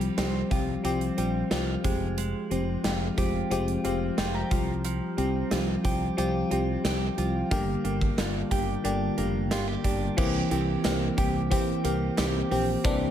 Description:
1980s-style pop; 90 BPM; 4/4; straight; C mixolydian; A4 = 440 Hz
FM electric piano; accompaniment; 0.0-13.1 s; D3 to Bb5; -28 LUFS; left 2 dB; chorus, shimmer reverb
direct-recorded clean electric guitar; riff; 0.0-13.1 s; E3 to G4; -34 LUFS; right 8 dB; wide subtle chorus, ping-pong delay, shimmer reverb
mellow fretless electric bass; bass; 0.0-13.1 s; F1 to C2; -31 LUFS; equal
gated 80s drum kit; drums; 0.0-13.0 s; crash cymbal, hi-hat, kick drum, snare drum, tambourine; -30 LUFS; right 1 dB; gated reverb
group handclap; percussion; 10.8-12.3 s; -46 LUFS; right 4 dB
light reverb, small room reverb; -25 LUFS; side -10 dB against mid
0.0-10.2 A section; 10.2-13.1 B section
FM electric piano fill 3.5-4.8
0.0 Csus4; 1.8 Fmadd9; 4.5 Csus4; 7.5 Gm; 10.2 C7

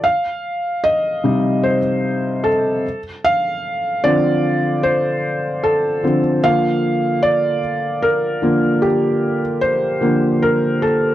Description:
pop; 75 BPM; 4/4; straight; A4 = 440 Hz
felt-muted upright piano; solo; 0.0-11.1 s; C3 to F5; -15 LUFS; equal
light reverb; dry, close 1970s-style studio recording; -15 LUFS; side -13 dB against mid
0.0-11.1 A section
felt piano solo 0.0-11.1
0.0 Cm; 2.8 Dm7; 6.4 Bb69/D

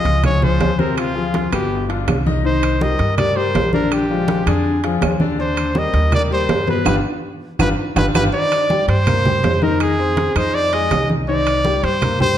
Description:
latin, salsa; 163 BPM; 4/4; straight; C minor; A4 = 439 Hz
clear trumpet; melody; 0.0-12.4 s; F4 to Eb5; -20 LUFS; equal
bright grand piano; accompaniment; 0.0-12.4 s; B2 to Eb6; -21 LUFS; left 5 dB
upright bass; bass; 0.0-12.3 s; G1 to G2; -21 LUFS; right 1 dB
congas; percussion; 0.0-12.4 s; -23 LUFS; right 1 dB
timbales; percussion; 0.1-12.2 s; -26 LUFS; right 6 dB
claves; percussion; 0.2-12.2 s; -32 LUFS; right 6 dB
wet recital hall reverb, RT60 1.4 s; dark, warm production; -15 LUFS; side -10 dB against mid
0.0-8.3 A section; 8.3-12.4 B section
band accent 6.9-8.3; drum fill 7.8-8.3
0.0 Dbmaj7; 1.0 Dm7b5; 1.7 G7; 2.4 Cm7; 3.9 Bb7; 5.4 Ebmaj7; 6.9 G7; 8.3 Cm7; 9.8 Fm7; 11.3 Cm7

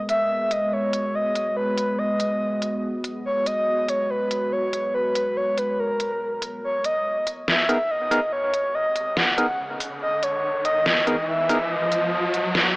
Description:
deep dubstep; 142 BPM; 4/4; swing 57% on 16ths, half-time; G# minor; A4 = 441 Hz
deep dark ambient pad; sustained chords; 0.0-12.8 s; G#3 to B4; -31 LUFS; equal; chorus, built-in reverb
breathy flute-like synth lead; melody; 0.1-12.6 s; A#4 to F#5; -23 LUFS; equal; chorus, tremolo, dub echo
dubstep drum kit; drums; 0.1-12.6 s; hi-hat, snare drum; -23 LUFS; equal
riser; sound effects; 8.9-12.8 s; -28 LUFS; equal
percussive organ stab; stabs; 7.7-11.6 s; B3 to A#4; -26 LUFS; equal; chorus, dub echo
light reverb; dry, gritty hardware recording, transformer saturation, AM radio sound; -21 LUFS; side -25 dB against mid
0.0-6.6 A section; 6.6-12.8 B section
build-up 6.6-12.8; filter sweep on ambient pad 6.6-12.8; riser 8.9-12.8
0.0 G#m; 6.6 G#madd9

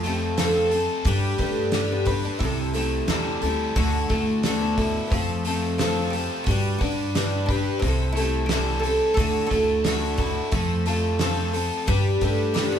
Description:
folk rock and heartland rock; 89 BPM; 4/4; straight; A4 = 439 Hz
oud; melody; 0.0-12.8 s; A3 to A4; -28 LUFS; right 2 dB
picked twelve-string acoustic guitar; accompaniment; 0.0-12.8 s; C3 to B4; -26 LUFS; left 3 dB
biting overdriven guitar; riff; 0.0-12.8 s; C3 to B4; -29 LUFS; right 1 dB
upright bass; bass; 0.0-12.8 s; C2 to G2; -27 LUFS; equal
loose indie drum kit; drums; 0.0-12.7 s; hi-hat, kick drum, snare drum; -28 LUFS; right 1 dB
light reverb; band playing live in one room; -21 LUFS; side -8 dB against mid
0.0-12.8 A section
0.0 F; 1.1 G; 2.4 C6; 3.8 Dadd9; 5.1 F; 6.5 G; 7.8 C6; 9.2 Dadd9; 10.5 F; 11.9 G

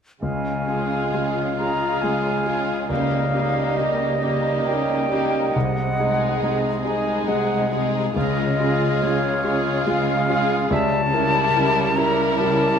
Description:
classical; 69 BPM; 3/4; rubato; Db major; A4 = 440 Hz
clear concert grand piano; melody; 0.2-12.8 s; C2 to Bb4; -24 LUFS; left 2 dB
bright concert flute; second line; 0.2-12.8 s; Db5 to Bb5; -25 LUFS; left 2 dB
clear oboe; second line; 0.2-11.0 s; Eb5 to F5; -29 LUFS; right 3 dB
warm bassoon; accompaniment; 0.2-11.0 s; G3 to Ab3; -28 LUFS; right 1 dB
rich studio cello section; bass; 0.2-12.8 s; C3 to Db3; -27 LUFS; right 4 dB
rich studio violin section; melody; 0.7-12.8 s; G4 to Bb4; -34 LUFS; left 3 dB
warm studio violin section; second line; 0.7-12.8 s; Eb4 to F4; -30 LUFS; left 3 dB
bright studio viola section; accompaniment; 0.7-12.8 s; G3 to Bb3; -30 LUFS; equal
moderate scoring stage reverb, RT60 1.7 s; -19 LUFS; side -7 dB against mid
0.2-12.8 A section
0.2 Db; 2.9 Eb7/Db; 5.5 Ab7/C; 8.2 Db; 10.7 Dbdim7

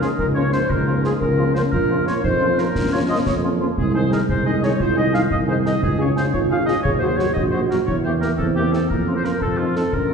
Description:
military-style march for wind band; 117 BPM (dotted quarters); 6/8; straight; Bb minor; A4 = 439 Hz
warm cornet; melody; 0.0-10.1 s; F4 to Ab4; -32 LUFS; right 2 dB
mellow euphonium; second line; 0.0-10.1 s; Ab3 to Ab4; -25 LUFS; right 2 dB
warm woodwind section; second line; 0.0-10.1 s; F4 to F5; -23 LUFS; left 2 dB
dark French horn section; accompaniment; 0.0-10.1 s; Db3 to Gb4; -26 LUFS; left 3 dB
mellow tuba; bass; 0.0-10.1 s; Ab1 to F2; -22 LUFS; right 2 dB
concert snare drum and concert bass drum; drums; 0.0-10.1 s; -26 LUFS; equal
wet concert hall reverb, RT60 1.9 s; recorded in a church or concert hall, nothing above 10.4 kHz; -17 LUFS; side -6 dB against mid
0.0-10.1 A section
0.0 Bbm/Db; 1.7 Bbm; 3.8 Ab/C; 5.8 Db; 6.9 Ebm; 7.9 Edim; 8.9 Bbm/F; 9.4 F5

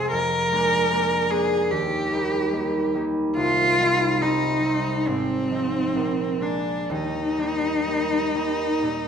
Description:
classical, romantic duo for cello and harp; 61-77 BPM; 4/4; rubato; Eb major; A4 = 442 Hz
clear cello; melody; 0.0-9.1 s; C4 to Bb4; -23 LUFS; left 1 dB
concert harp; accompaniment; 0.0-9.1 s; Ab1 to Eb4; -24 LUFS; right 1 dB
moderate recital hall reverb, RT60 1.5 s; minimal, uncompressed stereo recording; -20 LUFS; side -7 dB against mid
0.0-9.1 A section
0.1 Bb7/F; 1.7 Eb; 3.4 Cm; 5.1 Fm7/Ab; 5.9 Bb7; 6.9 Eb

